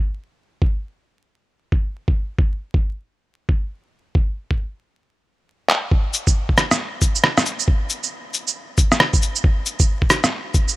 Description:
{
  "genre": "future garage",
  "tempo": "136 BPM",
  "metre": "4/4",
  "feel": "swing 62% on 16ths",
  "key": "none",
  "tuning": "none",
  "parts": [
    { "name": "electronic kick drum", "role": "drums", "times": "0.6-10.7 s", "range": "none", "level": "-18 LUFS", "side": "equal", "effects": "none" },
    { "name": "electronic handclaps, cabasa, shaker and rim click", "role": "drums", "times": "5.7-10.8 s", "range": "none", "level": "-18 LUFS", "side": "equal", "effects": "overdrive" }
  ],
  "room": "little or no reverb",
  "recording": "vinyl crackle",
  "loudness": "-18 LUFS",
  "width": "side -18 dB against mid",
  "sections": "0.0-5.9 A section; 5.9-10.8 B section",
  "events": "drum fill 5.7",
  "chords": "none"
}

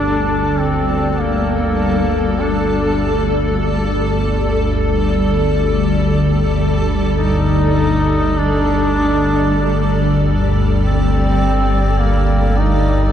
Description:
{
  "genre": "dark ambient drone",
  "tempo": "free time",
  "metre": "none",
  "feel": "none",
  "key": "G minor",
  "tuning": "A4 = 440 Hz",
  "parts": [
    { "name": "clear duduk", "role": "melody", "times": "0.0-13.1 s", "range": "Bb3 to Eb4", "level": "-20 LUFS", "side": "equal", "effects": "tape echo" },
    { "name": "granular cloud pad", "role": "sustained chords", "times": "0.0-13.1 s", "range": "G3 to D5", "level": "-19 LUFS", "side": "left 1 dB", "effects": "built-in reverb" },
    { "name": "organ-like drone", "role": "drone", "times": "0.0-13.1 s", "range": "G1 to D2", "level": "-16 LUFS", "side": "equal", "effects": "ensemble chorus, built-in reverb" }
  ],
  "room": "wet huge ambient reverb, RT60 7.9 s",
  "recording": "dark, warm production",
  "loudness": "-14 LUFS",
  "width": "side -9 dB against mid",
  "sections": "0.0-13.1 A section",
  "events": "filter sweep on synth drone 0.0-13.1",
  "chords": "0.0 G5"
}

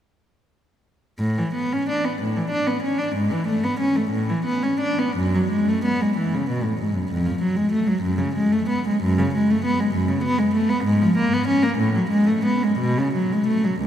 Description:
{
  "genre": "classical, baroque-style suite movement for unaccompanied cello",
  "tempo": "55-66 BPM (dotted quarters)",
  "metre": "6/8",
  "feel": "rubato",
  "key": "A major, F# minor from 9.0 s",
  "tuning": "A4 = 439 Hz",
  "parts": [
    { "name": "warm cello", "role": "solo", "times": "1.2-13.9 s", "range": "C#2 to D4", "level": "-19 LUFS", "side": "equal", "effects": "none" }
  ],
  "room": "wet cathedral reverb, RT60 5.6 s",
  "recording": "none",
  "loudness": "-19 LUFS",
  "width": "side -10 dB against mid",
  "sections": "1.2-13.9 A section",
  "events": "none",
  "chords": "none"
}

